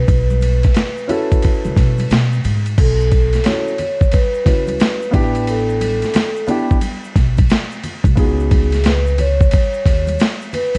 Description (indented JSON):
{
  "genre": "hip hop, jazz-hop",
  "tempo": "89 BPM",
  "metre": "4/4",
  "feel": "swing 65% on 16ths",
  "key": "unclear",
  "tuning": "A4 = 440 Hz",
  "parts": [
    { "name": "vibraphone with soft mallets", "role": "melody", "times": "0.0-10.8 s", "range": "G#4 to C#5", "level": "-24 LUFS", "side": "equal", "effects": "slapback echo" },
    { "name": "upright bass", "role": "bass", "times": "0.0-10.8 s", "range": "A1 to B2", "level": "-20 LUFS", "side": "equal", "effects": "none" },
    { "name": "dusty soul sampler-style drum kit", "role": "drums", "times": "0.1-10.8 s", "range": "crash cymbal, hi-hat, kick drum, ride cymbal, snare drum", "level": "-18 LUFS", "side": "equal", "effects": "overdrive" },
    { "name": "egg shaker and congas", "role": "percussion", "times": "0.1-10.8 s", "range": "none", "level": "-33 LUFS", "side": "equal", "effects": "none" },
    { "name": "dark concert grand piano", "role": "accompaniment", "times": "1.1-8.7 s", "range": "B3 to B4", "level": "-24 LUFS", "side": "equal", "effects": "none" }
  ],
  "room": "studio reverb",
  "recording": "dark, warm production, vinyl crackle, nothing above 11.0 kHz",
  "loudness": "-16 LUFS",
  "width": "mono",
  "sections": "0.0-2.8 A section; 2.8-10.8 B section",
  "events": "none",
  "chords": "0.1 B9sus4; 5.1 A9sus4; 8.2 C#9sus4",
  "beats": "| 0.08 0.76 1.43 2.10 | 2.78 3.45 4.13 4.80 | 5.47 6.15 6.82 7.50 | 8.17 8.85 9.52 10.20"
}